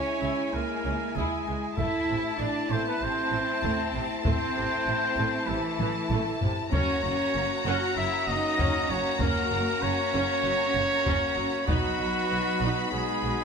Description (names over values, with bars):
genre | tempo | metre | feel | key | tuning
cinematic, epic orchestral film score | 97 BPM | 4/4 | straight | unclear | A4 = 440 Hz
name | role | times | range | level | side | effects
warm symphonic violin section | melody | 0.0-13.4 s | G#5 to B5 | -34 LUFS | left 3 dB | none
warm symphonic violin section | second line | 0.0-13.4 s | E4 to F#4 | -36 LUFS | left 2 dB | none
warm French horn section | sustained chords | 0.0-13.4 s | G#3 to E4 | -35 LUFS | left 4 dB | none
warm trumpet | stabs | 0.0-13.4 s | E4 to F#5 | -29 LUFS | right 1 dB | none
rich studio cello section | bass | 0.0-13.4 s | E3 to F#4 | -33 LUFS | right 1 dB | none
rich symphonic viola section | accompaniment | 0.2-13.3 s | C3 to E4 | -35 LUFS | right 2 dB | none
rich studio double bass section | bass | 0.2-13.3 s | F#1 to C#2 | -34 LUFS | right 4 dB | none
taiko ensemble | drums | 1.2-12.3 s | none | -31 LUFS | left 1 dB | none
room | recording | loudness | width
moderate scoring stage reverb, RT60 1.9 s | none | -24 LUFS | side -6 dB against mid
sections
0.0-13.4 A section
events
drum fill 5.8-6.7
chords
0.0 C#m; 1.8 Am; 6.7 F#; 11.7 B